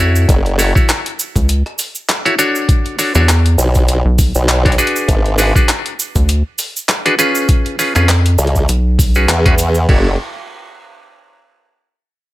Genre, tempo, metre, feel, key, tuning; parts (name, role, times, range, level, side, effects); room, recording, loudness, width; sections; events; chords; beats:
glitch hop; 100 BPM; 4/4; swing 56% on 16ths; F# minor; A4 = 442 Hz
clav; stabs; 0.0-10.1 s; C#4 to C#5; -16 LUFS; equal; sidechain pumping, ping-pong delay
rubbery square bass; bass; 0.0-9.3 s; B1 to E#2; -12 LUFS; equal
cabasa; percussion; 0.2-9.9 s; -22 LUFS; right 4 dB
formant-sweep wobble bass; bass; 0.3-10.2 s; F#1 to E2; -13 LUFS; equal; chorus
boom bap sampler-style drum kit; drums; 0.3-10.0 s; crash cymbal, kick drum; -14 LUFS; equal
boom bap sampler-style drum kit; drums; 0.3-9.7 s; handclaps, hi-hat, rim click; -19 LUFS; left 1 dB
little or no reverb; -11 LUFS; side -16 dB against mid
0.0-9.9 A section; 9.9-12.3 B section
drop 0.0-9.9
0.3 F#m7; 2.7 Bm7; 5.1 G#m7b5; 7.5 C#7; 8.7 E6; 9.9 F#m7
| 0.29 0.89 1.49 2.09 | 2.69 3.29 3.89 4.49 | 5.09 5.69 6.29 6.89 | 7.49 8.09 8.69 9.29 | 9.89